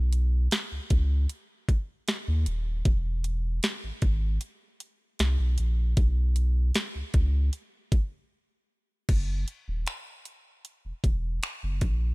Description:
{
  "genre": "contemporary R&B",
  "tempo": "77 BPM",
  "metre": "4/4",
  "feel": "straight",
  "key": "B major",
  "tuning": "A4 = 441 Hz",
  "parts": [
    { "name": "saturated sub bass", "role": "bass", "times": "0.0-12.1 s", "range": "D#1 to D#2", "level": "-25 LUFS", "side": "equal", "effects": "none" },
    { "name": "trap drum kit", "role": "drums", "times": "0.1-12.0 s", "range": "crash cymbal, finger snaps, hi-hat, kick drum, snare drum", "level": "-26 LUFS", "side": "equal", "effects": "none" }
  ],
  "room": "digital ambience",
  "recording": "none",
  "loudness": "-25 LUFS",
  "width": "side -24 dB against mid",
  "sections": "0.0-9.1 A section; 9.1-12.1 B section",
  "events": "break 8.3-9.1",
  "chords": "none",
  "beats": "0.52 1.30 2.08 | 2.86 3.63 4.41 5.19 | 5.97 6.75 7.53 8.31 | 9.09 9.87 10.65 11.43"
}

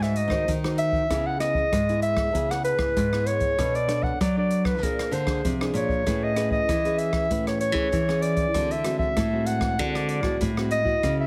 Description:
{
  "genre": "samba and choro",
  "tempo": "97 BPM",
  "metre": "4/4",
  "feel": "straight",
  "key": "unclear",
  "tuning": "A4 = 440 Hz",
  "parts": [
    { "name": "warm clarinet", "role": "melody", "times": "0.0-11.3 s", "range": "A#4 to F#5", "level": "-28 LUFS", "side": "equal", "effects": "plate reverb" },
    { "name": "nylon-string guitar", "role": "accompaniment", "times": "0.0-11.3 s", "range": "A2 to C#5", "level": "-32 LUFS", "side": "equal", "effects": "none" },
    { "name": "nylon-string guitar", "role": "bass", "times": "0.0-11.3 s", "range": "G#2 to F#3", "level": "-30 LUFS", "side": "equal", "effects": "none" },
    { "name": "open jazz drum kit", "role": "drums", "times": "0.0-11.2 s", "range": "hi-hat, kick drum, rim click", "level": "-33 LUFS", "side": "equal", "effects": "none" }
  ],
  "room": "moderate studio reverb, RT60 0.6 s",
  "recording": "heavily compressed radio sound, multiband compression",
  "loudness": "-24 LUFS",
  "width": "mono",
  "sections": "0.0-11.3 A section",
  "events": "none",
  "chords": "0.0 G#7; 1.1 C#m7; 3.6 Bm9; 4.8 A#9; 6.1 Amaj9; 8.6 D7#11",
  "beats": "0.48 | 1.10 1.72 2.35 2.96 | 3.59 4.21 4.83 5.45 | 6.07 6.69 7.31 7.93 | 8.55 9.17 9.79 10.41 | 11.03"
}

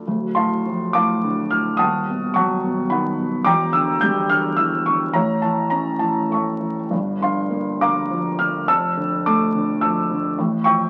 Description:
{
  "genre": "classical, lyrical solo piano",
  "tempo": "105 BPM",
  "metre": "3/4",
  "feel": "rubato",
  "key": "D minor",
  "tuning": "A4 = 442 Hz",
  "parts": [
    { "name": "felt-muted upright piano", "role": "solo", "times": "0.0-10.9 s", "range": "D1 to G6", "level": "-20 LUFS", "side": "equal", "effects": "none" }
  ],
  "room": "moderate studio reverb, RT60 0.6 s",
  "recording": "very old 78 rpm record, vinyl crackle",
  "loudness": "-20 LUFS",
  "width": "mono",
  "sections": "0.1-10.9 A section",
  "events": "none",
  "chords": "0.0 Dm; 1.8 B7/D#; 3.5 Em7b5; 5.2 A; 6.9 Gm7; 8.7 Dmadd9/F; 10.4 A7b13",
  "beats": "| 0.06 0.64 1.22 | 1.79 2.36 2.91 | 3.46 4.02 4.59 | 5.16 5.73 6.32 | 6.92 7.52 8.11 | 8.68 9.25 9.82 | 10.38"
}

